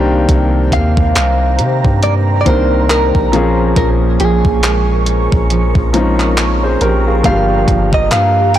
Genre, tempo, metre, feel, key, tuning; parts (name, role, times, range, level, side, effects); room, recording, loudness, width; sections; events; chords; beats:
contemporary R&B; 69 BPM; 4/4; swing 58% on 16ths; A4 = 440 Hz
warm baby grand piano; accompaniment; 0.0-8.6 s; Eb3 to C5; -17 LUFS; left 3 dB
glassy FM pad; sustained chords; 0.0-8.6 s; G4 to Db6; -22 LUFS; right 1 dB; ensemble chorus, built-in reverb, phaser
fingerpicked steel-string acoustic guitar; arpeggios; 0.0-8.6 s; G2 to G4; -21 LUFS; right 6 dB; digital delay
long sustained 808-style bass; bass; 0.0-8.6 s; G1 to C3; -15 LUFS; equal
crisp 8-bit digital drum machine; drums; 0.3-8.6 s; handclaps, hi-hat, kick drum; -16 LUFS; equal; overdrive
direct-recorded clean electric guitar; melody; 0.7-8.6 s; Ab4 to G5; -17 LUFS; right 1 dB; wide subtle chorus
digital ambience; blown-out, overdriven recording, overdrive; -10 LUFS; side -12 dB against mid
0.0-8.6 A section
0.0 Cm7; 3.3 Bbm7; 7.2 Gm7
| 0.29 1.16 2.03 2.90 | 3.77 4.63 5.50 6.37 | 7.24 8.11